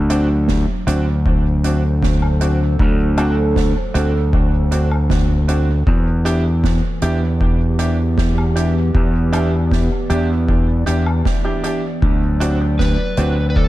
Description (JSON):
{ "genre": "ambient dub", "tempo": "78 BPM", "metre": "4/4", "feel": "straight", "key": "unclear", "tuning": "A4 = 440 Hz", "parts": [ { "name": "warbly tape-like pad", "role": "sustained chords", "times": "0.0-13.7 s", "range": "E3 to D5", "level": "-26 LUFS", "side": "right 1 dB", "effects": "chorus, built-in reverb" }, { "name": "growling fingered electric bass", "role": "bass", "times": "0.0-13.7 s", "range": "D2 to E2", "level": "-16 LUFS", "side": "equal", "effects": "overdrive" }, { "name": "clear upright piano", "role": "stabs", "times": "0.1-13.3 s", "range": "C4 to G4", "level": "-25 LUFS", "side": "right 1 dB", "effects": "dub echo" }, { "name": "soft-mallet drum kit", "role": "drums", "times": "0.1-13.3 s", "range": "hi-hat, snare drum, woodblock", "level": "-28 LUFS", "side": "right 4 dB", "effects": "studio reverb, dub echo" }, { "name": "electronic kick drum", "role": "drums", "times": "0.5-13.7 s", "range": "none", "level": "-20 LUFS", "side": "equal", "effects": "overdrive, studio reverb" }, { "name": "overdriven slide guitar", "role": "melody", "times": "12.8-13.7 s", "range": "A4 to B4", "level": "-24 LUFS", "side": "equal", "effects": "dub echo" } ], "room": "small room ambience", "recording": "dark, warm production", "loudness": "-14 LUFS", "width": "side -16 dB against mid", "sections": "0.0-13.7 A section", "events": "none", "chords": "0.0 D7; 5.9 Em7; 12.0 D7" }